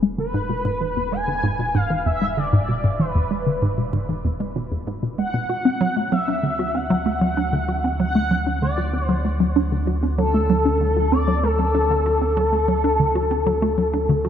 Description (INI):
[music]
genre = ambient, sequencer-driven space music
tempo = 96 BPM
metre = 4/4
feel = straight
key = unclear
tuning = A4 = 439 Hz
[part]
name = hollow square pluck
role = riff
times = 0.0-14.3 s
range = E2 to F#4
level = -22 LUFS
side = equal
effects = chorus, phaser, tape echo
[part]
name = round analog bass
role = bass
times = 0.0-14.3 s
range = E1 to D2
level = -26 LUFS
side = equal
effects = none
[part]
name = expressive synth lead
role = melody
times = 0.2-14.3 s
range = A4 to G#5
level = -23 LUFS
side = left 1 dB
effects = ensemble chorus, tape echo
[sound]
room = wet cathedral reverb, RT60 5.5 s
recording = in a vast, echoing space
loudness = -19 LUFS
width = side -9 dB against mid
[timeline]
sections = 0.0-14.3 A section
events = fade-in on analog synth bass 0.0-14.3; filter sweep on synth arpeggio sound 0.0-14.3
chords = 0.0 E; 5.5 D